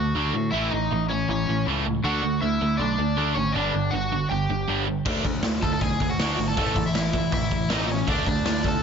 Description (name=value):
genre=punk rock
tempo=159 BPM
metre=4/4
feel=straight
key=unclear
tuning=A4 = 440 Hz
part: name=overdriven semi-hollow guitar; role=melody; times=0.0-8.8 s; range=C#4 to A5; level=-27 LUFS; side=left 1 dB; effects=none
part: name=biting overdriven guitar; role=riff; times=0.0-8.8 s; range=G2 to D4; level=-27 LUFS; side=right 12 dB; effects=none
part: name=overdriven semi-hollow guitar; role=riff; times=0.0-8.8 s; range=G2 to D4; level=-30 LUFS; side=left 12 dB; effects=none
part: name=growling picked electric bass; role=bass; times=0.0-8.8 s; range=G1 to A2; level=-29 LUFS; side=left 1 dB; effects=overdrive
part: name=raw garage drum kit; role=drums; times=5.1-8.7 s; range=crash cymbal, hi-hat, kick drum, snare drum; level=-27 LUFS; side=left 1 dB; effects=none
room=light reverb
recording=nothing above 7.6 kHz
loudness=-22 LUFS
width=side -6 dB against mid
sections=0.0-8.8 A section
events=none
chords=0.0 D; 0.5 A; 2.0 D; 3.6 G5; 5.1 D; 6.6 A; 8.1 D5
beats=0.15 | 0.53 0.91 1.29 1.66 | 2.04 2.42 2.80 3.17 | 3.55 3.93 4.31 4.68 | 5.06 5.44 5.82 6.19 | 6.57 6.95 7.33 7.70 | 8.08 8.46